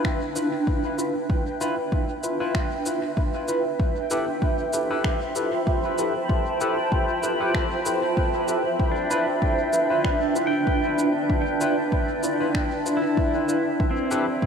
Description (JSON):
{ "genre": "ambient dub", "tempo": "96 BPM", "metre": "4/4", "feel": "swing 55% on 16ths", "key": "D dorian", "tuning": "A4 = 440 Hz", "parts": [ { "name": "granular cloud pad", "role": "sustained chords", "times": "0.0-14.5 s", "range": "F3 to B5", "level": "-24 LUFS", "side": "right 2 dB", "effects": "built-in reverb, lush chorus" }, { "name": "pedal steel guitar", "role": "arpeggios", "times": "0.0-0.2, 8.9-14.5 s", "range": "C4 to G5", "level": "-30 LUFS", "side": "equal", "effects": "dub echo" }, { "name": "electronic finger snaps and shaker", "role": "drums", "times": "0.0-14.2 s", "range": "none", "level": "-36 LUFS", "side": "left 1 dB", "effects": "dub echo" }, { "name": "electronic kick drum", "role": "drums", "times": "0.0-14.5 s", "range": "none", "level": "-25 LUFS", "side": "equal", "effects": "overdrive" }, { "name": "bubbling stepped-filter texture", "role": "texture", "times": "0.0-14.5 s", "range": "G5", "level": "-36 LUFS", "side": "left 2 dB", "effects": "chorus, built-in reverb" }, { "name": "barky tine electric piano", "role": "stabs", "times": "0.4-14.2 s", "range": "E4 to B4", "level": "-29 LUFS", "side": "left 3 dB", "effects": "lush chorus, dub echo" } ], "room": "wet huge ambient reverb, RT60 6.3 s", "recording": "dreamy mix soaked in reverb", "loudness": "-21 LUFS", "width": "side -6 dB against mid", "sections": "0.0-14.5 A section", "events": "none", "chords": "0.0 Dm69; 3.8 Fmaj9#11; 8.8 Dm69; 13.8 Fmaj9#11", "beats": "0.05 0.67 | 1.30 1.92 2.55 3.17 | 3.80 4.42 5.05 5.67 | 6.30 6.92 7.55 8.17 | 8.80 9.42 10.05 10.67 | 11.30 11.92 12.55 13.17 | 13.80 14.42" }